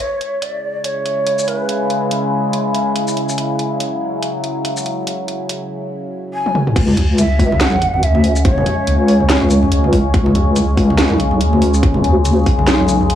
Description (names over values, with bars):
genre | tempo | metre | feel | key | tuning
deep dubstep | 142 BPM | 4/4 | swing 57% on 16ths, half-time | C# phrygian | A4 = 440 Hz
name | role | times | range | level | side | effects
breathy hollow shakuhachi | melody | 0.0-2.1, 6.3-9.7 s | B4 to G#5 | -21 LUFS | right 1 dB | dub echo
overtone-sweeping drone | sustained chords | 0.7-13.2 s | C#3 to E4 | -20 LUFS | left 1 dB | chorus, built-in reverb
garage drum kit | drums | 0.0-13.2 s | crash cymbal, handclaps, hi-hat, shaker, snare drum, toms | -20 LUFS | equal | overdrive
deep soft wobble bass | bass | 6.8-13.2 s | B1 to D2 | -14 LUFS | equal | chorus, tube saturation
electronic kick drum | drums | 6.8-12.6 s | none | -14 LUFS | equal | overdrive
congas | percussion | 6.9-13.1 s | none | -22 LUFS | left 1 dB | dub echo
room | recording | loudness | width
light reverb, digital ambience | dry, gritty hardware recording, transformer saturation, small room ambience | -13 LUFS | side -10 dB against mid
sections
0.0-6.8 A section; 6.8-13.2 B section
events
drum fill 6.4-6.8; drop 6.8-13.2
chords
0.0 C#m; 6.8 C#5